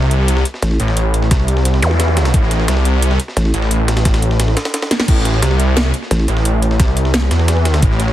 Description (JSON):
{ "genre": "dark technical drum and bass", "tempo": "175 BPM", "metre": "4/4", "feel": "straight", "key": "A minor", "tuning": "A4 = 440 Hz", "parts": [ { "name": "wide detuned saw bass", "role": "bass", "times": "0.0-8.1 s", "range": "A1 to E2", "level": "-13 LUFS", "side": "equal", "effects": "chorus, tube saturation, sidechain pumping" }, { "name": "breakbeat sampler-style drum kit", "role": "drums", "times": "0.0-8.1 s", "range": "hi-hat, snare drum", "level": "-24 LUFS", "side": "equal", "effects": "high-pass filter on hats, high-pass filter on snare" }, { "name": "drum and bass drum kit", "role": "drums", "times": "0.1-8.1 s", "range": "crash cymbal, hi-hat, snare drum", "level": "-20 LUFS", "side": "equal", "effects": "none" }, { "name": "vowel-sweep wobble bass", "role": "bass", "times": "0.6-0.8, 3.4-3.5, 6.1-6.3 s", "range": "A1", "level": "-14 LUFS", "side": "equal", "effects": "chorus" }, { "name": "electronic kick drum", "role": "drums", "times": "1.3-7.9 s", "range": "none", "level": "-14 LUFS", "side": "equal", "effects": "none" }, { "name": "zap", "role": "sound effects", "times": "1.8-1.9 s", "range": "none", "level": "-21 LUFS", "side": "equal", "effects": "none" } ], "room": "digital ambience", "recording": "heavily compressed radio sound, multiband compression", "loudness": "-12 LUFS", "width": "side -13 dB against mid", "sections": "0.0-8.1 A section", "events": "drum fill 4.9", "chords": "0.0 A5" }